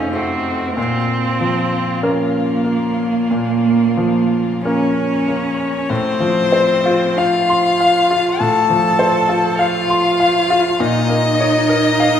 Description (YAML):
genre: classical, slow romantic movement for piano trio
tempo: 43-51 BPM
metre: 4/4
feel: rubato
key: Bb minor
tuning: A4 = 442 Hz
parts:
  - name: rich violin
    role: melody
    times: 0.0-12.2 s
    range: F4 to A5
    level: -19 LUFS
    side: left 4 dB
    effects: none
  - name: rich cello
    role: second line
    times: 0.0-12.2 s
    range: Bb3 to A4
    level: -19 LUFS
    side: right 3 dB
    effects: none
  - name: bright grand piano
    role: accompaniment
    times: 0.0-12.2 s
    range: F2 to C6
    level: -18 LUFS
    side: left 1 dB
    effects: none
room: wet concert hall reverb, RT60 2.3 s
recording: heard from further back in the room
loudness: -14 LUFS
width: side -9 dB against mid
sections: 0.0-5.9 A section; 5.9-12.2 B section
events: none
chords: 0.0 F7; 0.8 Bbm; 5.9 F/A; 10.8 Bbm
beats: | 0.77 2.02 3.30 4.64 | 5.89 7.18 8.40 9.59 | 10.79 11.99